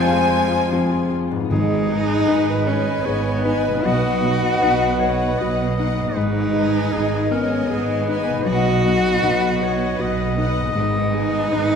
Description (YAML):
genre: cinematic, emotional film score for orchestra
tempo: 78 BPM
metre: 3/4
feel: rubato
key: G# minor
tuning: A4 = 440 Hz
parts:
  - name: rich studio violin section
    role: melody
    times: 0.0-11.8 s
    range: F#5 to Ab5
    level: -32 LUFS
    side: left 2 dB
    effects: none
  - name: clear clarinet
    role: second line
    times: 0.0-11.8 s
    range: G#4 to D#5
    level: -28 LUFS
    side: left 2 dB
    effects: none
  - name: mellow hollow flute section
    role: second line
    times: 0.0-11.8 s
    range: B4 to Ab5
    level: -26 LUFS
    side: left 2 dB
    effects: none
  - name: warm studio violin section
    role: second line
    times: 0.0-11.8 s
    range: D#5 to Ab5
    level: -32 LUFS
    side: left 3 dB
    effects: none
  - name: felt-muted upright piano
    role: accompaniment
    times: 0.0-11.8 s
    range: F1 to B4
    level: -24 LUFS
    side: left 3 dB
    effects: none
  - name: warm studio viola section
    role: accompaniment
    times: 0.0-11.8 s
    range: F3 to B4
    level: -32 LUFS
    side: right 1 dB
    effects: none
  - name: warm French horn section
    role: sustained chords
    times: 0.0-11.8 s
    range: F3 to D#5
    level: -26 LUFS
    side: left 2 dB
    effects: none
  - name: concert harp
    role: arpeggios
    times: 0.0-11.8 s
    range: G#2 to C6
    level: -29 LUFS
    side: left 7 dB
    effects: none
  - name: clear studio cello section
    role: bass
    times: 0.0-11.8 s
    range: G#2 to Ab3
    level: -26 LUFS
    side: right 3 dB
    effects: none
  - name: warm studio double bass section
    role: bass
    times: 0.0-11.8 s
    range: G#1 to F2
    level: -27 LUFS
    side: right 5 dB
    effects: none
  - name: warm cello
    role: melody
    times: 1.5-11.8 s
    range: B3 to F#4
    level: -24 LUFS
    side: right 2 dB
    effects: none
  - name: timpani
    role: percussion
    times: 1.5-2.6, 10.8-11.8 s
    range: G#2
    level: -28 LUFS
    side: right 1 dB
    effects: none
room: wet scoring stage reverb, RT60 1.9 s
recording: minimal, uncompressed stereo recording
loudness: -17 LUFS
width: side -6 dB against mid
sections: 0.0-1.5 A section; 1.5-11.8 B section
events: none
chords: 0.0 Fm; 1.5 G#m; 3.8 B; 6.2 G#m; 8.5 B; 10.8 G#m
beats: 0.71 | 1.50 2.28 3.05 | 3.85 4.62 5.39 | 6.16 6.92 7.69 | 8.47 9.23 9.99 | 10.76 11.51